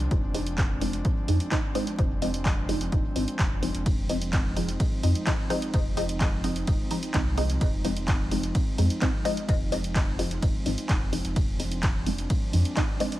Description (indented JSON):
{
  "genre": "dub techno",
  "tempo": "128 BPM",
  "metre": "4/4",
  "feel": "straight",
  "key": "F dorian",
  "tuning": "A4 = 439 Hz",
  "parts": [
    { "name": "airy breathy pad", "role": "sustained chords", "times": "0.0-13.2 s", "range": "F3 to Eb4", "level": "-34 LUFS", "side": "equal", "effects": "chorus, sidechain pumping" },
    { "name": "round analog bass", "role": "bass", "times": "0.0-12.6 s", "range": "F1 to F2", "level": "-29 LUFS", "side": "equal", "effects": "tube saturation, sidechain pumping" },
    { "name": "punchy analog drum machine", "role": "drums", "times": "0.0-13.2 s", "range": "handclaps, hi-hat, ride cymbal", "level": "-34 LUFS", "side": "right 1 dB", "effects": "none" },
    { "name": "electronic kick drum", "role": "drums", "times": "0.1-12.9 s", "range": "none", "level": "-27 LUFS", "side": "equal", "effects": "none" },
    { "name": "filtered dub chord stab", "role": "stabs", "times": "0.3-13.1 s", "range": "F3 to Eb4", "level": "-31 LUFS", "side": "equal", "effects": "phaser, sidechain pumping, dub echo" }
  ],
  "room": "little or no reverb",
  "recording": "vinyl crackle",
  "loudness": "-24 LUFS",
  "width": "side -15 dB against mid",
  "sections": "0.0-13.2 A section",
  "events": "none",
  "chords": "0.0 Fm7"
}